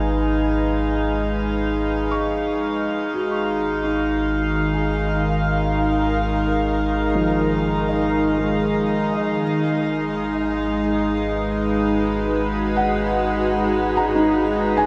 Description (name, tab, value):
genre	ambient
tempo	74 BPM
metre	4/4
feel	straight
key	G# dorian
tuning	A4 = 440 Hz
part	evolving wavetable pad	sustained chords	0.0-14.9 s	D#3 to G#5	-27 LUFS	equal	chorus, built-in reverb
part	felt-muted upright piano	arpeggios	0.0-14.9 s	E#3 to C#6	-30 LUFS	equal	diffuse ambient delay
part	round analog bass	bass	0.0-14.9 s	G#1	-30 LUFS	equal	none
part	hand-pumped harmonium	drone	0.0-14.9 s	G#3 to D#4	-26 LUFS	equal	none
part	drifting glass-harmonics texture	texture	0.0-14.9 s	D#4 to E#5	-28 LUFS	equal	chorus, built-in reverb
room	wet shimmer reverb, RT60 8.6 s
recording	none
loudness	-21 LUFS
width	mono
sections	0.0-14.9 A section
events	fade-in on ambient pad 0.0-14.9; fade-in on felt piano 0.0-14.9; fade-out on analog synth bass 0.0-14.9; fade-out on synth texture 0.0-14.9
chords	0.0 G#m; 2.9 D#madd9/G#; 9.4 G#m7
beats	0.54 1.34 2.13 | 2.93 3.73 4.53 5.34 | 6.15 6.96 7.77 8.59 | 9.41 10.23 11.04 11.84 | 12.65 13.46 14.26